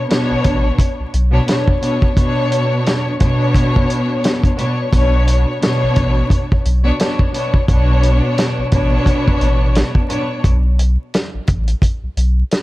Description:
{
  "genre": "hip hop, boom-bap hip-hop",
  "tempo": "87 BPM",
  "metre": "4/4",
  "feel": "swing 59% on 16ths",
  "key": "B minor",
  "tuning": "A4 = 439 Hz",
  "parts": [
    { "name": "warm studio string section", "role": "accompaniment", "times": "0.0-10.4 s", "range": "B2 to C#5", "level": "-17 LUFS", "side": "equal", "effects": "cassette tape" },
    { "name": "warm soul drum kit", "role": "drums", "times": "0.1-12.6 s", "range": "hi-hat, kick drum, snare drum", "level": "-16 LUFS", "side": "equal", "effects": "none" },
    { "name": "warm sub bass", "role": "bass", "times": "0.3-12.4 s", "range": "A1 to B1", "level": "-15 LUFS", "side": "equal", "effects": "none" }
  ],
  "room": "light reverb, small room ambience",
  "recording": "dark, warm production, vinyl crackle",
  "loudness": "-13 LUFS",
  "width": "side -18 dB against mid",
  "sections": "0.0-12.6 A section",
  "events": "none",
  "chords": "0.0 Bmadd9; 10.4 Asus2"
}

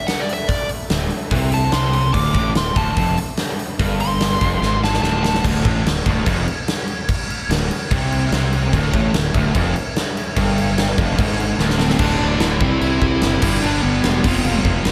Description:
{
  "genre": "hard rock",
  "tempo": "146 BPM",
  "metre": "4/4",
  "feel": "straight",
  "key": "unclear",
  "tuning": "A4 = 440 Hz",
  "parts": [
    { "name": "dark smooth lead guitar", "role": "melody", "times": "0.0-5.4, 11.8-14.6 s", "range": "B3 to D6", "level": "-25 LUFS", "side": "equal", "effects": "overdrive, slapback echo" },
    { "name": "hollow soft pad", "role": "sustained chords", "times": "0.0-5.4, 8.7-14.9 s", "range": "D4 to C6", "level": "-36 LUFS", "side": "equal", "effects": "none" },
    { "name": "big rock drum kit", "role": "drums", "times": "0.1-14.9 s", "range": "crash cymbal, hi-hat, kick drum, snare drum", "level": "-23 LUFS", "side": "equal", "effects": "none" },
    { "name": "overdriven electric guitar", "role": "riff", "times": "0.9-14.9 s", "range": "D2 to C4", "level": "-28 LUFS", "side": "equal", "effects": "none" },
    { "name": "overdriven electric guitar", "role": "riff", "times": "0.9-14.9 s", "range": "D2 to C4", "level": "-25 LUFS", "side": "equal", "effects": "none" },
    { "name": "fuzz fingered electric bass", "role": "bass", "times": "0.9-14.9 s", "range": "D1 to C2", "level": "-25 LUFS", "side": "equal", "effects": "overdrive" }
  ],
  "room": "moderate lush hall reverb, RT60 2.0 s",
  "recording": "big arena sound",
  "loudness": "-18 LUFS",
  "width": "mono",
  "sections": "0.0-5.4 A section; 5.4-12.0 B section; 12.0-14.9 C section",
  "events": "lead electric guitar solo 0.0-5.4; drum fill 4.6-5.4, 11.6-12.0",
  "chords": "0.0 D5; 12.0 D; 12.6 C; 13.4 G; 14.2 F"
}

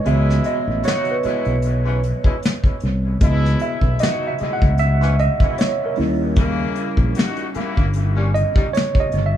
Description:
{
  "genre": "R&B, neo-soul",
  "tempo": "76 BPM",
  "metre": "4/4",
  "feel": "swing 54% on 16ths",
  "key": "C# minor",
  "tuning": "A4 = 441 Hz",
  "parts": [
    { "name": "mellow tine electric piano", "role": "accompaniment", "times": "0.0-9.4 s", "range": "E3 to F#5", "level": "-22 LUFS", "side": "right 4 dB", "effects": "medium stereo tremolo, dub echo" },
    { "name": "warm horn section", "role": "stabs", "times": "0.1-8.7 s", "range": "G#2 to F#4", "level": "-27 LUFS", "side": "left 4 dB", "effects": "dub echo" },
    { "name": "fretless electric bass", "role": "bass", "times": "0.1-9.4 s", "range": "G1 to D#2", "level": "-18 LUFS", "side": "equal", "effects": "none" },
    { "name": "vintage brush drum kit", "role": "drums", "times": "0.1-9.3 s", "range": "hi-hat, kick drum, snare drum", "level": "-19 LUFS", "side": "left 1 dB", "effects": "dub echo" }
  ],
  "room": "small room ambience",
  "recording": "echo-heavy mix",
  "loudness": "-16 LUFS",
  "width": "side -10 dB against mid",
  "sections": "0.0-9.4 A section",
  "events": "tine electric piano solo 0.0-9.4; break 0.1-1.6",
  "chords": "0.1 C#m9; 6.0 D#7b9"
}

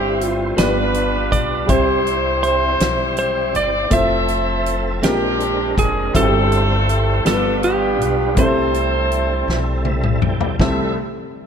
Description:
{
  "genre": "slow gospel",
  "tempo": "54 BPM (dotted quarters)",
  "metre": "6/8",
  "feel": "straight",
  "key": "C major",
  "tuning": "A4 = 445 Hz",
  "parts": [
    { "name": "clean lap steel guitar", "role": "melody", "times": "0.0-9.8 s", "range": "G4 to E5", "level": "-22 LUFS", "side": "right 3 dB", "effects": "none" },
    { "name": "clear horn section", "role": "melody", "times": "0.0-10.9 s", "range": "B3 to E5", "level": "-22 LUFS", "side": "equal", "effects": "none" },
    { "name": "warm upright piano", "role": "accompaniment", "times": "0.0-10.9 s", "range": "C2 to D5", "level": "-22 LUFS", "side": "left 1 dB", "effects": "none" },
    { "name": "overdriven tonewheel organ", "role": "sustained chords", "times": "0.0-10.9 s", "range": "F3 to G5", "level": "-26 LUFS", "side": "right 2 dB", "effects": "chorus vibrato, fast rotary speaker" },
    { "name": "upright bass", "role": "bass", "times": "0.0-10.9 s", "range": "F1 to C2", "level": "-23 LUFS", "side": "equal", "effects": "none" },
    { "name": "natural country drum kit", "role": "drums", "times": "0.2-10.8 s", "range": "hi-hat, kick drum, snare drum, toms", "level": "-22 LUFS", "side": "left 1 dB", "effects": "none" }
  ],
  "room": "light reverb",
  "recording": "none",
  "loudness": "-15 LUFS",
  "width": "side -7 dB against mid",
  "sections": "0.0-10.6 A section",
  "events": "drum fill 9.5-10.6; tonewheel organ fill 9.5-10.6",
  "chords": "0.0 C/G; 0.6 G7; 1.7 Cmaj7; 3.9 Fmaj7; 5.0 Bb9; 6.1 C/G; 7.3 G7; 8.4 C6"
}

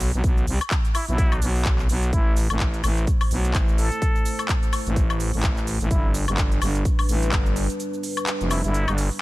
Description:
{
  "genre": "bass house",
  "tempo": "127 BPM",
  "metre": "4/4",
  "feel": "swing 57% on 16ths",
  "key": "A minor",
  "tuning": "A4 = 439 Hz",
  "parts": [
    { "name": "growling FM bass", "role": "bass", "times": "0.0-9.1 s", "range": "F1 to C2", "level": "-23 LUFS", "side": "equal", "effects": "overdrive, sidechain pumping" },
    { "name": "big-room dance drum kit", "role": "drums", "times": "0.0-9.2 s", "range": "handclaps, hi-hat, shaker, woodblock", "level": "-28 LUFS", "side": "left 1 dB", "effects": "none" },
    { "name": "electronic kick drum", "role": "drums", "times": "0.2-7.4 s", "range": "none", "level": "-22 LUFS", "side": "equal", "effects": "none" },
    { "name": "trumpet with plunger mute", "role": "melody", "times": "0.9-9.1 s", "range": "E4 to A4", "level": "-32 LUFS", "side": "equal", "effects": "digital delay" },
    { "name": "dark analog pad", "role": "sustained chords", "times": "2.1-9.2 s", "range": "G3 to C5", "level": "-32 LUFS", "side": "equal", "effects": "lush chorus, sidechain pumping" }
  ],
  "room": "little or no reverb",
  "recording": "none",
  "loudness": "-20 LUFS",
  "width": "side -18 dB against mid",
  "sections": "0.0-9.2 A section",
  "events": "break 7.8-9.2",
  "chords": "0.0 Bsus4; 2.1 Am; 5.9 G"
}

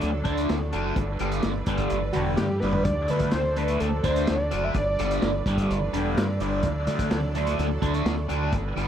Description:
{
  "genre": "psychedelic rock",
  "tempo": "127 BPM",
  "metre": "4/4",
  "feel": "straight",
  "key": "D major",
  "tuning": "A4 = 439 Hz",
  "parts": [
    { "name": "rich symphonic string section", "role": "sustained chords", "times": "0.0-8.9 s", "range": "F#3 to D5", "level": "-35 LUFS", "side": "right 5 dB", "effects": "none" },
    { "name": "fuzz guitar", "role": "riff", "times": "0.0-8.9 s", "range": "G2 to D4", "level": "-27 LUFS", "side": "equal", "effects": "distortion, phaser, dub echo" },
    { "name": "fingered electric bass", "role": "bass", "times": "0.0-8.9 s", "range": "E1 to D3", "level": "-29 LUFS", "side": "equal", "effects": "none" },
    { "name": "tanpura", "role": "drone", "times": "0.0-8.9 s", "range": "D2 to D3", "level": "-40 LUFS", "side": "equal", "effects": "none" },
    { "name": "vintage drum kit", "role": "drums", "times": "0.0-8.9 s", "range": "hi-hat, kick drum, snare drum, toms", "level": "-30 LUFS", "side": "equal", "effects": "dub echo" },
    { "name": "fat analog lead", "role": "melody", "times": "2.1-5.7 s", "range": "F#4 to E5", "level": "-29 LUFS", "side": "equal", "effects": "dub echo" }
  ],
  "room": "light reverb, small room ambience",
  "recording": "echo-heavy mix",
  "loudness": "-23 LUFS",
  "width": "side -9 dB against mid",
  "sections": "0.0-8.9 A section",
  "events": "drum fill 2.6",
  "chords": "0.0 D; 1.0 G; 2.9 D; 4.7 G; 6.6 D"
}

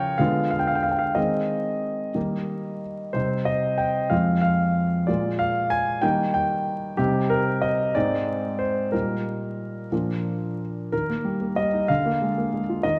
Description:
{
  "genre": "classical-period piano sonatina",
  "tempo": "62 BPM (dotted quarters)",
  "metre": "6/8",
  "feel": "straight",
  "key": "Eb major from 3.1 s",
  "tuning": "A4 = 439 Hz",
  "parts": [
    { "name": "warm concert grand piano", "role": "solo", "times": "0.0-13.0 s", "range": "F2 to Ab5", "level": "-24 LUFS", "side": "equal", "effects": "none" }
  ],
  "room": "wet recital hall reverb, RT60 1.5 s",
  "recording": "vinyl crackle",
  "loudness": "-24 LUFS",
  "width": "mono",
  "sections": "0.0-10.9 A section; 10.9-13.0 B section",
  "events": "none",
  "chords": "0.2 Ddim7; 1.2 Ab/Eb; 2.2 Eb; 3.1 Cm; 4.1 Fm; 5.1 Bb5; 6.0 Eb; 7.0 Cm; 8.0 Ab; 8.9 Eb/Bb; 9.9 Bb; 10.9 Eb; 11.9 Bb7/D"
}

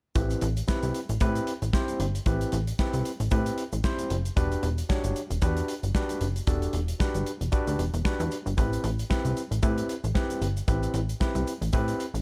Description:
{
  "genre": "early-eighties boogie funk",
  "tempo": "114 BPM",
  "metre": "4/4",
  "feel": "swing 56% on 16ths",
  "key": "A dorian",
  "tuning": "A4 = 441 Hz",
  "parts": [
    { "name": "overdriven tine electric piano", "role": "accompaniment", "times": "0.2-12.0 s", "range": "C4 to C#5", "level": "-34 LUFS", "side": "equal", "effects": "none" },
    { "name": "plucky analog bass", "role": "bass", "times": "0.2-12.2 s", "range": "E1 to A2", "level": "-30 LUFS", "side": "equal", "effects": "none" },
    { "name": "modern studio drum kit", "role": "drums", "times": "0.2-12.2 s", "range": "hi-hat, kick drum, snare drum", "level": "-32 LUFS", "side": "equal", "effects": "none" },
    { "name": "tube shaker", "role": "percussion", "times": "0.2-12.2 s", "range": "none", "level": "-50 LUFS", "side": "equal", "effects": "none" }
  ],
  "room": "studio reverb",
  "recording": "none",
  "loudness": "-28 LUFS",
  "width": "mono",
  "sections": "0.2-12.2 A section",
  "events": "none",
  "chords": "0.2 Am9; 4.4 Em9; 8.6 Am9"
}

